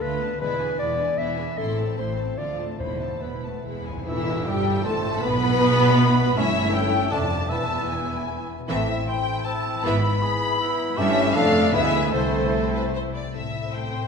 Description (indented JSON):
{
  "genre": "classical, dramatic, fast romantic movement for symphony orchestra",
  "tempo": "140-161 BPM",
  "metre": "3/4",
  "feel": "rubato",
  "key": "A minor",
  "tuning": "A4 = 440 Hz",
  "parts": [
    { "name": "dark symphonic violin section", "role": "melody", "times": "0.0-14.1 s", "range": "C5 to C6", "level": "-29 LUFS", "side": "left 4 dB", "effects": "none" },
    { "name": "mellow clarinet", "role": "second line", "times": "0.0-13.1 s", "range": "C#4 to E5", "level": "-30 LUFS", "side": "left 2 dB", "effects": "none" },
    { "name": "warm symphonic violin section", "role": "second line", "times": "0.0-14.1 s", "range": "B3 to E5", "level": "-33 LUFS", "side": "left 5 dB", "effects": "none" },
    { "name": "warm symphonic viola section", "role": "accompaniment", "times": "0.0-14.1 s", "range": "E3 to C5", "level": "-31 LUFS", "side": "equal", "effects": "none" },
    { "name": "concert harp", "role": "arpeggios", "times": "0.0-14.1 s", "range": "E2 to C#6", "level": "-32 LUFS", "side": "left 5 dB", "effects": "none" },
    { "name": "dark symphonic double bass section", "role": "bass", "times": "0.0-14.1 s", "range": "E1 to D2", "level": "-30 LUFS", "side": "right 4 dB", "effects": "none" },
    { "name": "warm symphonic cello section", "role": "bass", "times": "0.0-14.1 s", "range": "C2 to B2", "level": "-29 LUFS", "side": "right 4 dB", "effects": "none" },
    { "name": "clear French horn section", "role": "sustained chords", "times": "0.4-13.1 s", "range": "E3 to A4", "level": "-31 LUFS", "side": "left 2 dB", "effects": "none" },
    { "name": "cymbal swell and tam-tam", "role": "percussion", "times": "1.6-5.6 s", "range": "none", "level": "-39 LUFS", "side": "equal", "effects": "none" },
    { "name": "timpani", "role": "percussion", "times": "2.8-4.0 s", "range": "E2", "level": "-37 LUFS", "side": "equal", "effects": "none" },
    { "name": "hollow concert flute", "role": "second line", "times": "4.1-12.9 s", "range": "C5 to B5", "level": "-31 LUFS", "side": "left 3 dB", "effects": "none" },
    { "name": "mellow cor anglais", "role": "second line", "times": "4.1-13.1 s", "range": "E4 to E5", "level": "-31 LUFS", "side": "right 3 dB", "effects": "none" },
    { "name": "mellow bassoon", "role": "accompaniment", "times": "4.1-13.1 s", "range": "E3 to C4", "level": "-32 LUFS", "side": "right 1 dB", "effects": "none" },
    { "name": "bright trombone section", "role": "sustained chords", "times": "4.1-13.1 s", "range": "D3 to B3", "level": "-31 LUFS", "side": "right 2 dB", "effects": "none" }
  ],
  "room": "wet concert hall reverb, RT60 2.2 s",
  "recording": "minimal, uncompressed stereo recording",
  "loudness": "-20 LUFS",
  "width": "side -5 dB against mid",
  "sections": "0.0-4.1 A section; 4.1-13.3 B section",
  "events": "timpani fill 3.7-4.1; band accent 4.1-4.5",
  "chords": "0.4 E7; 1.6 Am; 2.4 Dm; 2.8 Esus4; 3.7 E; 4.1 Am/E; 5.2 E/B; 6.4 A7/G; 7.1 Dm/F; 7.5 E; 8.7 Am; 9.8 E/G#; 11.0 A7/G; 11.4 Dm/F; 11.7 E7/D; 12.1 Am/C; 13.3 Am",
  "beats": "0.02 | 0.40 0.79 1.19 | 1.58 1.98 2.39 | 2.81 3.23 3.65 | 4.07 4.45 4.84 | 5.23 5.62 5.99 | 6.37 6.74 7.12 | 7.51 7.90 8.29 | 8.69 9.08 9.46 | 9.84 10.22 10.60 | 10.98 11.36 11.74 | 12.14 12.54 12.94 | 13.34 13.74"
}